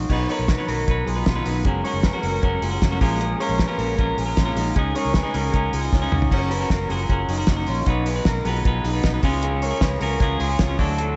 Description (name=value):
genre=jangly indie pop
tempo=154 BPM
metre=4/4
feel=straight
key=F# major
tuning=A4 = 435 Hz
part: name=electric guitar through a small old amp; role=arpeggios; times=0.0-11.2 s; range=A#3 to C#5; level=-29 LUFS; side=equal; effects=spring reverb, slapback echo
part: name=vintage muted fingered electric bass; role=bass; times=0.0-11.2 s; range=F#1 to D2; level=-28 LUFS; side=equal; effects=none
part: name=semi-hollow electric guitar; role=accompaniment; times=0.1-11.2 s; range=A#2 to B4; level=-28 LUFS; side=equal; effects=none
part: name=cloth-damped thuddy drum kit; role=drums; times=0.1-11.1 s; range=crash cymbal, hi-hat, kick drum, snare drum, toms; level=-26 LUFS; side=equal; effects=none
room=moderate lush hall reverb, RT60 2.1 s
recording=big arena sound, nothing above 8.0 kHz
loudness=-22 LUFS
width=mono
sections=0.1-6.3 A section; 6.3-11.2 B section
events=drum fill 5.9-6.3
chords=0.1 B; 1.7 F#add9; 3.0 A#m7; 4.8 C#sus2; 6.3 F#; 7.9 B; 9.2 C#